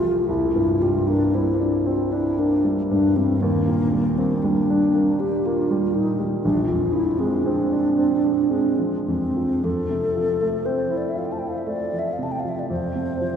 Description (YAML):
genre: classical, impressionist duo for alto flute and grand piano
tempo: 51-61 BPM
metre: 3/4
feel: rubato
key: F mixolydian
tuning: A4 = 442 Hz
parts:
  - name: mellow hollow alto flute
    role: melody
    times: 0.0-13.4 s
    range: Bb3 to A5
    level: -21 LUFS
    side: left 1 dB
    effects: none
  - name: warm grand piano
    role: accompaniment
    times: 0.0-13.4 s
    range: F1 to F4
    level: -23 LUFS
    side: right 1 dB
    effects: none
room: wet cathedral reverb, RT60 5.4 s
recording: heard from further back in the room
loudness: -19 LUFS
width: side -8 dB against mid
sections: 0.0-13.4 A section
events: none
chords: 0.3 Csus2; 3.4 Ebmaj7; 6.4 Bb9; 9.6 Fmaj7; 12.7 Ebsus2/F (rootless)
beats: | 0.28 1.34 2.38 | 3.42 4.44 5.45 | 6.44 7.45 8.51 | 9.64 10.66 11.67 | 12.70